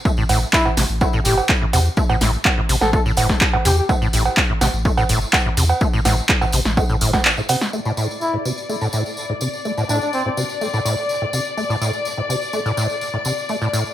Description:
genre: acid house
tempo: 125 BPM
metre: 4/4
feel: straight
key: A minor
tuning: A4 = 439 Hz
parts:
  - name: deep acid bass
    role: riff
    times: 0.1-13.8 s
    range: A2 to A3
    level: -23 LUFS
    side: equal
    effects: tube saturation, analog chorus, cassette tape, digital delay
  - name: electronic kick drum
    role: drums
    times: 0.1-7.2 s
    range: none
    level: -20 LUFS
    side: equal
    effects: overdrive
  - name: tambourine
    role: percussion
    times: 0.1-13.9 s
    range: none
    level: -29 LUFS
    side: left 1 dB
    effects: none
  - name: warm sub bass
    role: bass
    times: 0.3-7.2 s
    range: G1 to E2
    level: -20 LUFS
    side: equal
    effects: sidechain pumping
  - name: punchy analog drum machine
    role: drums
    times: 0.3-7.8 s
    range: cowbell, crash cymbal, handclaps, hi-hat, snare drum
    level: -19 LUFS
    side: right 2 dB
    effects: overdrive, low-pass filter on hats, low-pass filter on perc, low-pass filter on snare, low-pass filter on cymbals
  - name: trumpet with bucket mute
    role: melody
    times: 0.5-3.9, 8.2-10.3 s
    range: C4 to A4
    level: -24 LUFS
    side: left 1 dB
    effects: ping-pong delay
  - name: warm studio string section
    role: sustained chords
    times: 7.7-13.9 s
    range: D5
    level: -25 LUFS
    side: left 4 dB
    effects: sidechain pumping, low-pass filter
room: light reverb, digital ambience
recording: none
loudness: -16 LUFS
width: side -12 dB against mid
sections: 0.0-7.7 A section; 7.7-13.9 B section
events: drop 0.0-7.7; kick drops out 7.3-7.7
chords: 0.0 A5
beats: | 0.05 0.53 1.01 1.49 | 1.97 2.45 2.93 3.41 | 3.89 4.37 4.85 5.33 | 5.81 6.29 6.77 7.25 | 7.73 8.21 8.69 9.17 | 9.65 10.13 10.61 11.09 | 11.57 12.05 12.53 13.01 | 13.49

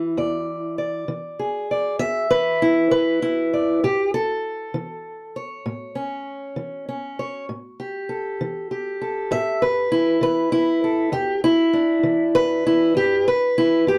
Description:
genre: acoustic country blues, solo or duo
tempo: 66 BPM (dotted quarters)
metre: 12/8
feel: straight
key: unclear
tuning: A4 = 440 Hz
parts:
  - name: fingerpicked steel-string acoustic guitar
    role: solo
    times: 0.0-14.0 s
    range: E2 to E5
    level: -22 LUFS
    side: equal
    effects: none
room: light reverb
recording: dry, close 1970s-style studio recording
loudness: -21 LUFS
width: mono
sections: 0.0-14.0 A section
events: none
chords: 0.0 E7; 3.8 A; 7.5 A5; 11.1 E7(no3)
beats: | 0.17 1.08 2.00 2.91 | 3.82 4.74 5.65 6.56 | 7.48 8.39 9.30 10.22 | 11.13 12.04 12.95 13.87

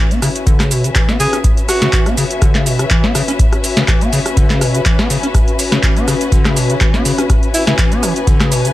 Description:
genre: acid house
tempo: 123 BPM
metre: 4/4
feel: swing 54% on 16ths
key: C# phrygian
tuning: A4 = 440 Hz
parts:
  - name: acid bass, square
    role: riff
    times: 0.0-8.7 s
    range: B2 to C#4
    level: -18 LUFS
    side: equal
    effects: overdrive, lush chorus, analog delay
  - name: warm symphonic string section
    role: texture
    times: 0.0-8.7 s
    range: C#4 to G#5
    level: -20 LUFS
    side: left 3 dB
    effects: sidechain pumping
  - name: booming analog drum machine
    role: drums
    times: 0.1-8.7 s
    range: handclaps, hi-hat, rim click, shaker, snare drum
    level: -18 LUFS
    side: equal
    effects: none
  - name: electronic kick drum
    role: drums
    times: 0.5-8.4 s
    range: none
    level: -14 LUFS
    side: equal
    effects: none
  - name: breathy alto saxophone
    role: melody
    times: 1.2-2.1, 7.5-7.7 s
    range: E4 to G#4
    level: -20 LUFS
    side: right 1 dB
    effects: tape echo
room: light reverb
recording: none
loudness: -11 LUFS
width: side -15 dB against mid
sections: 0.0-8.7 A section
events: none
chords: 0.0 C#m7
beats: 0.47 0.95 | 1.44 1.93 2.42 2.91 | 3.39 3.88 4.37 4.86 | 5.34 5.83 6.32 6.81 | 7.30 7.78 8.27

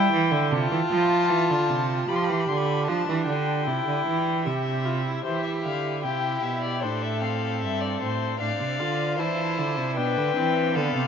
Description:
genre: classical, baroque-style fugue for string quartet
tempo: 76 BPM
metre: 4/4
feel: straight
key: unclear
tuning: A4 = 440 Hz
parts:
  - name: dark violin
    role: melody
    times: 0.0-11.1 s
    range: C5 to C6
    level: -28 LUFS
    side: left 8 dB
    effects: none
  - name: warm viola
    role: accompaniment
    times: 0.0-11.1 s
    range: B3 to G4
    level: -28 LUFS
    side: equal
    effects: none
  - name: rich cello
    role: bass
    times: 0.0-11.1 s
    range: G2 to G3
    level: -26 LUFS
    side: right 5 dB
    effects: none
  - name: rich violin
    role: second line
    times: 5.3-11.1 s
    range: E4 to D5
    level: -31 LUFS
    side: left 5 dB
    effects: none
room: wet huge ambient reverb, RT60 8.3 s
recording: in a vast, echoing space, nothing above 7.5 kHz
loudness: -22 LUFS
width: side -7 dB against mid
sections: 0.0-5.3 A section; 5.3-11.1 B section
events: none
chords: 0.0 C (rootless); 0.5 Dm7/C; 2.1 G7; 3.7 C; 6.8 Am; 8.4 Dm; 10.0 Bdim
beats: 0.51 1.30 | 2.09 2.88 3.67 4.46 | 5.25 6.04 6.83 7.62 | 8.41 9.19 9.97 10.76

